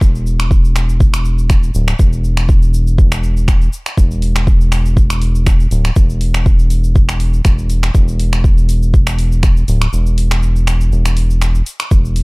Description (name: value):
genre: afro house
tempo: 121 BPM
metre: 4/4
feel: swing 54% on 16ths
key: unclear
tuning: A4 = 441 Hz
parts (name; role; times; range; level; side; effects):
- round analog bass; bass; 0.0-12.2 s; D1 to E1; -14 LUFS; equal; sidechain pumping
- deep house drum kit; drums; 0.0-12.2 s; finger snaps, hi-hat, shaker; -23 LUFS; right 1 dB; none
- electronic kick drum; drums; 0.0-12.0 s; none; -12 LUFS; equal; none
room: little or no reverb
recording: dry, gritty hardware recording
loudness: -11 LUFS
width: side -28 dB against mid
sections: 0.0-12.2 A section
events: break 9.9-11.9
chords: none